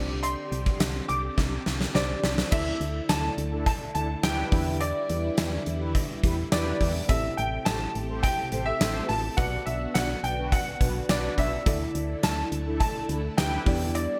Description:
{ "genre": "1980s-style pop", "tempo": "105 BPM", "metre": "4/4", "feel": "straight", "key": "unclear", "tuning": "A4 = 439 Hz", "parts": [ { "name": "clear baby grand piano", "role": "melody", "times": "0.0-14.2 s", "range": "D5 to D6", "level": "-33 LUFS", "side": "equal", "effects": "analog chorus" }, { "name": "FM electric piano with soft pad layer", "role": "accompaniment", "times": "0.0-14.2 s", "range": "B3 to E5", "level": "-38 LUFS", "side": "equal", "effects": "chorus" }, { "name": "phased string machine", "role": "sustained chords", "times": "0.0-14.2 s", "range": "C3 to G4", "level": "-40 LUFS", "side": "equal", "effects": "ensemble chorus, phaser" }, { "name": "solid FM bass", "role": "bass", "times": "0.0-14.1 s", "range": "A1 to E2", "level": "-33 LUFS", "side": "equal", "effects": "none" }, { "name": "gated 80s drum kit", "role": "drums", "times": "0.2-14.1 s", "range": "crash cymbal, hi-hat, kick drum, snare drum, tambourine", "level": "-30 LUFS", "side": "equal", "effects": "gated reverb" }, { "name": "cowbell", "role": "percussion", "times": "0.2-14.1 s", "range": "none", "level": "-46 LUFS", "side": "equal", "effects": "none" }, { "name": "mellow synth brass", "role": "stabs", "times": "3.1-13.8 s", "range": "D4 to C5", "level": "-39 LUFS", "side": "equal", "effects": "chorus, delay" } ], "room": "moderate plate reverb, RT60 2.3 s", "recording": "bright 1980s-style digital production", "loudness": "-27 LUFS", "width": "mono", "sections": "0.0-2.5 A section; 2.5-14.2 B section", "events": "drum fill 1.4-2.5", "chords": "0.0 Csus2; 2.5 Dsus2; 4.5 Em7; 7.1 Am7; 9.4 Bm; 11.7 Dsus2; 13.7 Em7" }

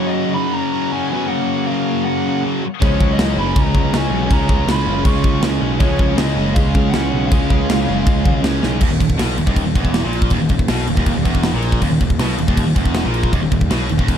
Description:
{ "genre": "heavy metal", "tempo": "160 BPM", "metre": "4/4", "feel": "straight", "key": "Eb minor", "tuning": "A4 = 440 Hz", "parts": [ { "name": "bluesy overdriven lead guitar", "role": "melody", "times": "0.0-8.4 s", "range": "Db5 to Db6", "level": "-25 LUFS", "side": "left 1 dB", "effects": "distortion, digital delay" }, { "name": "smooth overdriven lead guitar", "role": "second line", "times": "0.0-8.4 s", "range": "F3 to F4", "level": "-26 LUFS", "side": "right 5 dB", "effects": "digital delay" }, { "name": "distorted electric guitar", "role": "riff", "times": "0.0-14.2 s", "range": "Eb2 to Db4", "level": "-23 LUFS", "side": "equal", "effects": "overdrive" }, { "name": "heavy high-gain guitar", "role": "riff", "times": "0.0-14.2 s", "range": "Eb2 to Db4", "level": "-25 LUFS", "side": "right 12 dB", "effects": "distortion" }, { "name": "scooped high-gain guitar", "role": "riff", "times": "0.0-14.2 s", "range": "Eb2 to Db4", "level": "-25 LUFS", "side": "left 13 dB", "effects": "distortion" }, { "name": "fuzz picked electric bass", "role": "bass", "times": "2.8-14.2 s", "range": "Eb1 to Db2", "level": "-20 LUFS", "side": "equal", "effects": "overdrive" }, { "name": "tight metal drum kit", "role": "drums", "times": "2.8-14.2 s", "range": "crash cymbal, kick drum, snare drum", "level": "-18 LUFS", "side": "equal", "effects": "none" } ], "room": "little or no reverb", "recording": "dark, warm production", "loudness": "-14 LUFS", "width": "side -9 dB against mid", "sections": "0.0-8.8 A section; 8.8-14.2 B section", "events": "drum fill 8.6", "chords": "0.0 Gb; 2.8 Db; 8.8 Eb5" }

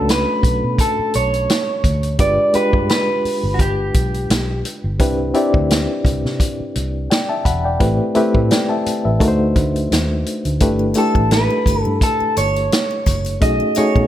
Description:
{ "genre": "lush 1970s-style soul", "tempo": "86 BPM", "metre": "4/4", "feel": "swing 54% on 16ths", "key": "unclear", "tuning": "A4 = 439 Hz", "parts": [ { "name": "electric guitar through a small old amp", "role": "melody", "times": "0.0-4.6, 11.0-14.1 s", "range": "F#4 to D#5", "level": "-19 LUFS", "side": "right 1 dB", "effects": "spring reverb" }, { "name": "reed electric piano", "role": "accompaniment", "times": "0.0-14.1 s", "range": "Ab3 to B5", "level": "-20 LUFS", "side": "left 1 dB", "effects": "fast tremolo" }, { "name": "vintage muted fingered electric bass", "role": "bass", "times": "0.0-14.1 s", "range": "E1 to C3", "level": "-21 LUFS", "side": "equal", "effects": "none" }, { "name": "vintage drum kit", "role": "drums", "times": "0.1-14.1 s", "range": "hi-hat, kick drum, snare drum", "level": "-19 LUFS", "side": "equal", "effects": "none" }, { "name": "triangle", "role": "percussion", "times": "10.6-14.1 s", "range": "none", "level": "-32 LUFS", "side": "left 6 dB", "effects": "none" } ], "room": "light reverb", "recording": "none", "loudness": "-15 LUFS", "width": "side -12 dB against mid", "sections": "0.0-14.1 A section", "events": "none", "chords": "0.0 Bm9; 2.2 G7b9; 5.0 Cmaj7; 7.8 Am7; 9.2 D7b9; 10.6 G69; 13.4 B13" }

